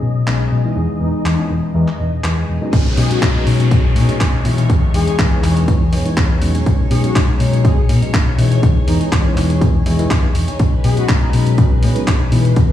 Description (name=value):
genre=filtered disco house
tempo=122 BPM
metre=4/4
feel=swing 54% on 16ths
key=B major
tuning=A4 = 437 Hz
part: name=phased string machine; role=sustained chords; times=0.0-12.7 s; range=B4 to D#5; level=-30 LUFS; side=right 1 dB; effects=ensemble chorus, phaser, sidechain pumping, low-pass filter
part: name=direct-recorded clean electric guitar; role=riff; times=0.0-12.7 s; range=F#3 to G#4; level=-28 LUFS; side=left 2 dB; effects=lush chorus, sidechain pumping, low-pass filter
part: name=hollow-body short-scale fingered electric bass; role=bass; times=0.0-12.7 s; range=E1 to B2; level=-16 LUFS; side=left 2 dB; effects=tube saturation, sidechain pumping, low-pass filter
part: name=tambourine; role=percussion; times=0.0-2.7 s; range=none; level=-63 LUFS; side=left 10 dB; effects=none
part: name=overdriven reed electric piano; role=accompaniment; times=0.3-12.7 s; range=E3 to E4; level=-22 LUFS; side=left 1 dB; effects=phaser, sidechain pumping, low-pass filter
part: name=dusty soul sampler-style drum kit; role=drums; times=0.3-12.7 s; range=crash cymbal, handclaps, hi-hat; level=-25 LUFS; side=equal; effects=sidechain pumping on hats, sidechain pumping on cymbals
part: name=analog synth brass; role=melody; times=1.0-11.3 s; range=D#4 to G#4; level=-26 LUFS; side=left 1 dB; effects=chorus, sidechain pumping, low-pass filter, digital delay
part: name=electronic kick drum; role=drums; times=2.7-12.7 s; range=none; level=-14 LUFS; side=equal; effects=none
part: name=downlifter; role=sound effects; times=2.7-6.7 s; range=none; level=-29 LUFS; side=equal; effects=none
room=little or no reverb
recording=played on a big sound system in a bare room, stone room reverb, studio ambience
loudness=-13 LUFS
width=side -12 dB against mid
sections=0.0-2.7 A section; 2.7-12.7 B section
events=filter sweep 0.0-2.7; drop 2.7-12.7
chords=0.0 B69; 0.8 Emaj7; 2.7 B69; 4.7 Emaj7; 6.7 B69; 8.6 Emaj7; 10.6 B69